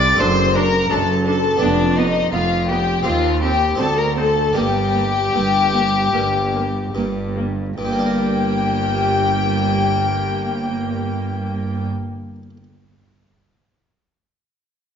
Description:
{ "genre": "classical, baroque-style concerto movement with solo episodes", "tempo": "72-85 BPM", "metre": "4/4", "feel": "straight", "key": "G minor", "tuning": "A4 = 439 Hz", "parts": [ { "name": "rich symphonic violin section", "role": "melody", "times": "0.0-11.9 s", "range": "D5 to D6", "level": "-26 LUFS", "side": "left 4 dB", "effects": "none" }, { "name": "rich violin", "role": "melody", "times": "0.0-11.9 s", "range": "D4 to G5", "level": "-21 LUFS", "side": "left 3 dB", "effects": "none" }, { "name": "warm chamber violin section", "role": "second line", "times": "0.0-11.9 s", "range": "D4 to D5", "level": "-25 LUFS", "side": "left 5 dB", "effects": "none" }, { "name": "harpsichord", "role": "accompaniment", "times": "0.0-12.6 s", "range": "D2 to Bb4", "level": "-28 LUFS", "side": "right 1 dB", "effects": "none" }, { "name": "rich chamber cello section", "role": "bass", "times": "0.0-11.9 s", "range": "D2 to C3", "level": "-24 LUFS", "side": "right 2 dB", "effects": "none" }, { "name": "rich studio double bass section", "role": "bass", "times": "0.0-11.9 s", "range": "F1 to Eb2", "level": "-24 LUFS", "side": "right 3 dB", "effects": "none" }, { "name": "rich chamber viola section", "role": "accompaniment", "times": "0.2-11.9 s", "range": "Bb3 to D4", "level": "-26 LUFS", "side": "right 1 dB", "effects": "none" } ], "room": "moderate recital hall reverb, RT60 1.4 s", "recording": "nothing above 7.4 kHz", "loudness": "-16 LUFS", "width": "side -7 dB against mid", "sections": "0.0-7.8 A section; 7.8-11.1 B section", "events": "slowing down 0.2-7.8", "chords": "0.2 D/F#; 1.6 G7/F; 3.1 Cm/Eb; 3.8 D5; 4.6 Gm" }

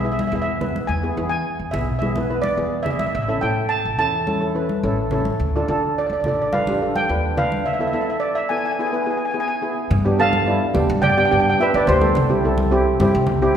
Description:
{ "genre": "calypso", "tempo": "106 BPM", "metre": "4/4", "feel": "straight", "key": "unclear", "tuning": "A4 = 440 Hz", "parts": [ { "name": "steel pan", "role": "melody", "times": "0.0-13.6 s", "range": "G4 to A5", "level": "-21 LUFS", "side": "right 1 dB", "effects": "none" }, { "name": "steel pan", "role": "accompaniment", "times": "0.0-13.5 s", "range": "B3 to B4", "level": "-22 LUFS", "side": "right 1 dB", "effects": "none" }, { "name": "upright bass", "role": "bass", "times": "0.0-13.5 s", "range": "A1 to E3", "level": "-24 LUFS", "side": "equal", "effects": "none" }, { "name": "congas", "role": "percussion", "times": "0.2-13.4 s", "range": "none", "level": "-26 LUFS", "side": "equal", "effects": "none" } ], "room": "wet concert hall reverb, RT60 1.9 s", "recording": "heard from further back in the room", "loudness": "-18 LUFS", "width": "side -8 dB against mid", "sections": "0.0-9.9 A section; 9.9-13.6 B section", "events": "none", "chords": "0.0 E; 3.1 A; 5.4 Dm; 7.7 Esus4; 8.8 E; 9.9 G; 12.2 C" }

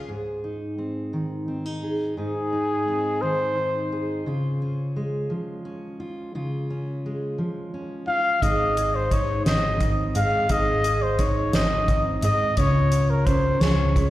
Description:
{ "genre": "indie folk with a building arrangement", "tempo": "58 BPM (dotted quarters)", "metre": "6/8", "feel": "straight", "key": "Ab major", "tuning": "A4 = 440 Hz", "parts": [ { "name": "ukulele", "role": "arpeggios", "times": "0.0-0.1, 8.4-14.1 s", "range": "Db4 to Eb5", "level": "-32 LUFS", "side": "right 7 dB", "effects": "slapback echo" }, { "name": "fingerpicked steel-string acoustic guitar", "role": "accompaniment", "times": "0.1-14.1 s", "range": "Ab2 to Ab4", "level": "-28 LUFS", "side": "equal", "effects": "none" }, { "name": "dark trumpet", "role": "melody", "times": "2.2-3.9, 8.1-14.1 s", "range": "Ab4 to F5", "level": "-24 LUFS", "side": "left 1 dB", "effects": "slapback echo, digital delay" }, { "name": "hollow-body short-scale fingered electric bass", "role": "bass", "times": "8.4-14.1 s", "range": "Ab1 to Ab2", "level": "-24 LUFS", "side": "equal", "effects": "none" }, { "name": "soft-mallet drum kit", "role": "drums", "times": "8.4-14.1 s", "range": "hi-hat, kick drum, snare drum", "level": "-25 LUFS", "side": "equal", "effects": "none" } ], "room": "light reverb", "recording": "live gig heard through the venue's PA, recital hall reverb", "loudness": "-21 LUFS", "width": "side -15 dB against mid", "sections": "0.1-8.4 A section; 8.4-14.1 B section", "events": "build-up 8.4-14.1; drum fill 8.4-14.1", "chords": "0.1 Ab; 4.3 Db; 8.4 Ab; 12.6 Db" }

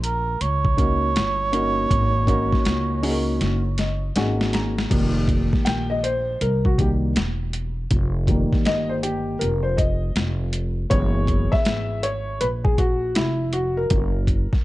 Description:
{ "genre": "hip hop, jazz-hop", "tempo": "80 BPM", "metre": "4/4", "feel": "swing 64% on 16ths", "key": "F phrygian", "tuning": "A4 = 440 Hz", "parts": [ { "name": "trumpet with cup mute", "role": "melody", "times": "0.0-4.2 s", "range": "Bb4 to Db5", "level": "-24 LUFS", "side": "right 4 dB", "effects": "none" }, { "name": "upright bass", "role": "bass", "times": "0.0-14.6 s", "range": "E1 to Db2", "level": "-24 LUFS", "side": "equal", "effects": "none" }, { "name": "boom bap sampler-style drum kit", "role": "drums", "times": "0.0-14.6 s", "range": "crash cymbal, hi-hat, kick drum, snare drum", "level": "-23 LUFS", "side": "equal", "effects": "overdrive" }, { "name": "dark upright piano", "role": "accompaniment", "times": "0.8-14.6 s", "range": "Eb3 to Bb5", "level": "-24 LUFS", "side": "left 1 dB", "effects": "none" } ], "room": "small room ambience", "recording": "dark, warm production, nothing above 10.9 kHz", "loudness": "-19 LUFS", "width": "side -17 dB against mid", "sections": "0.0-4.9 A section; 4.9-14.6 B section", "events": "drum fill 3.4-4.9; upright piano fill 3.4-4.9; upright piano solo 4.9-14.6", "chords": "0.0 Ab9sus4; 4.9 F9sus4; 10.9 Gb9sus4" }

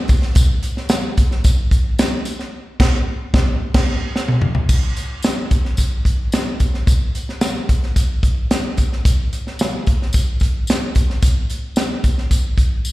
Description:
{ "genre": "soul", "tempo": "110 BPM", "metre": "4/4", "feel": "straight", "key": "none", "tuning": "none", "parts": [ { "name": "natural country drum kit", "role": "drums", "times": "0.1-12.7 s", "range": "crash cymbal, hi-hat, kick drum, snare drum, toms", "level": "-16 LUFS", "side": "equal", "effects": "slapback echo" }, { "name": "tambourine", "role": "percussion", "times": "0.1-12.9 s", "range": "none", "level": "-32 LUFS", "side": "left 2 dB", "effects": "slapback echo" } ], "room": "light reverb", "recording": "live gig heard through the venue's PA, recital hall reverb", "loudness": "-16 LUFS", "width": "side -18 dB against mid", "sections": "0.0-4.7 A section; 4.7-12.9 B section", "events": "band accent 2.5-4.7; drum fill 4.2-4.7", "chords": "none" }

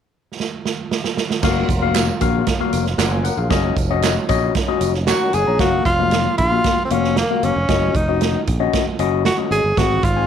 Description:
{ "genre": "uptempo 1960s-style soul", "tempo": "115 BPM", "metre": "4/4", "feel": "straight", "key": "F# major", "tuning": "A4 = 441 Hz", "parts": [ { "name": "swinging big-band drum kit", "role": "drums", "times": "0.4-10.2 s", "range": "crash cymbal, hi-hat, kick drum, snare drum", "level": "-21 LUFS", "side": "right 4 dB", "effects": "none" }, { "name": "overdriven tine electric piano", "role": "accompaniment", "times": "1.4-10.3 s", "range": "G#2 to A#5", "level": "-21 LUFS", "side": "left 11 dB", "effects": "phaser" }, { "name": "percussive tonewheel organ", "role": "sustained chords", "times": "1.4-5.6 s", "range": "F#3 to E#4", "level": "-28 LUFS", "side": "right 1 dB", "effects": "overdrive, chorus vibrato, slow rotary speaker" }, { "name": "modern bright fingered electric bass", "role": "bass", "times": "1.4-10.2 s", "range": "E#1 to A#1", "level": "-22 LUFS", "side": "right 1 dB", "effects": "none" }, { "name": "tambourine and handclaps", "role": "percussion", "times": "1.4-5.5 s", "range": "none", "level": "-29 LUFS", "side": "right 10 dB", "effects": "none" }, { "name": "breathy tenor saxophone", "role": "melody", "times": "5.1-10.3 s", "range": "A#3 to G#4", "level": "-19 LUFS", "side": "right 1 dB", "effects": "slapback echo" } ], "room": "moderate spring reverb, RT60 1.3 s, small room ambience", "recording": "1960s-style stereo with parts hard left and right", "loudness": "-16 LUFS", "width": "side -8 dB against mid", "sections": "0.0-1.4 A section; 1.4-5.6 B section; 5.6-10.3 C section", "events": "drum fill 0.4-1.4", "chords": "0.0 N.C.; 1.4 F#maj7; 3.5 D#m7; 5.6 F#maj7; 7.7 D#m7" }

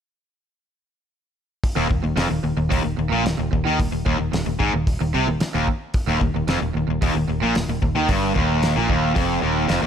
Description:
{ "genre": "classic rock", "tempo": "112 BPM", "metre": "4/4", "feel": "straight", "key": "Eb major", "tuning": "A4 = 436 Hz", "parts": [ { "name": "cloth-damped thuddy drum kit", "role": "drums", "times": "1.6-9.8 s", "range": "hi-hat, kick drum, snare drum", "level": "-24 LUFS", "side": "equal", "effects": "none" }, { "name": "cranked stack guitar", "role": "riff", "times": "1.8-9.9 s", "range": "Eb2 to Eb3", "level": "-24 LUFS", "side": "right 11 dB", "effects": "overdrive" }, { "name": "distorted electric guitar", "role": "riff", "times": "1.8-9.9 s", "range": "Eb2 to Eb3", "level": "-23 LUFS", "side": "left 11 dB", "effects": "overdrive" }, { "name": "fingered electric bass", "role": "bass", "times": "1.8-9.9 s", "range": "Eb1 to Eb2", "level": "-26 LUFS", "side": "equal", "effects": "none" } ], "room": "small room ambience", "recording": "none", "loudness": "-19 LUFS", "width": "side -8 dB against mid", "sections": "1.6-9.9 A section", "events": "none", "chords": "1.6 Eb5" }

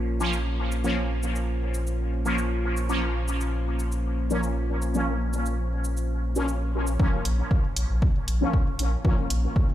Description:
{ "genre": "dub techno", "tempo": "117 BPM", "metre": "4/4", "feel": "straight", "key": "Bb minor", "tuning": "A4 = 440 Hz", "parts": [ { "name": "deep dark ambient pad", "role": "sustained chords", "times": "0.0-9.7 s", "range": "Bb3 to Db5", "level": "-34 LUFS", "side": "equal", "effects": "chorus, built-in reverb, sidechain pumping" }, { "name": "warm sub bass", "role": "bass", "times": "0.0-9.5 s", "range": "Bb1", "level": "-26 LUFS", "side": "equal", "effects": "sidechain pumping" }, { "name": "resonant sweep polysynth", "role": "stabs", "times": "0.2-9.2 s", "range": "F3 to Db4", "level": "-30 LUFS", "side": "left 1 dB", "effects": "chorus, phaser, sidechain pumping, dub echo" }, { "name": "electronic shaker and hi-hat", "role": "drums", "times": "0.2-9.4 s", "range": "none", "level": "-36 LUFS", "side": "equal", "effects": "overdrive" }, { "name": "electronic kick drum", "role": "drums", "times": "7.0-9.7 s", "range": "none", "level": "-23 LUFS", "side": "equal", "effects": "overdrive" } ], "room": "light reverb", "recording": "played on a big sound system in a bare room, large studio reverb", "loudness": "-23 LUFS", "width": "side -12 dB against mid", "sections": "0.0-7.0 A section; 7.0-9.7 B section", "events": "filter sweep on analog polysynth 7.0-9.7", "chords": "0.0 Bbm" }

